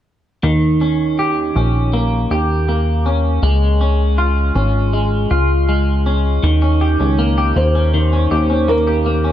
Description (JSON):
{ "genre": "dream pop", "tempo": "80 BPM", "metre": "4/4", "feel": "straight", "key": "Eb mixolydian", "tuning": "A4 = 440 Hz", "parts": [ { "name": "clean electric guitar", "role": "arpeggios", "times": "0.4-9.3 s", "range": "Eb3 to G4", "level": "-17 LUFS", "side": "equal", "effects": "analog chorus, tape echo" }, { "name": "plucky analog bass", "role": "bass", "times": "0.4-9.3 s", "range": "Ab1 to Eb2", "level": "-15 LUFS", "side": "equal", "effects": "none" }, { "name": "felt-muted upright piano", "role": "melody", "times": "7.6-9.3 s", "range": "Bb4 to C5", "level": "-19 LUFS", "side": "equal", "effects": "tape echo" } ], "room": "light reverb, studio reverb", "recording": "dark, warm production", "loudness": "-13 LUFS", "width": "side -11 dB against mid", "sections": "0.4-6.4 A section; 6.4-9.3 B section", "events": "none", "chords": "0.4 Eb7; 3.4 Db; 6.4 Eb7", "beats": "| 0.44 1.19 1.94 2.69 | 3.44 4.19 4.94 5.69 | 6.44 7.19 7.94 8.69" }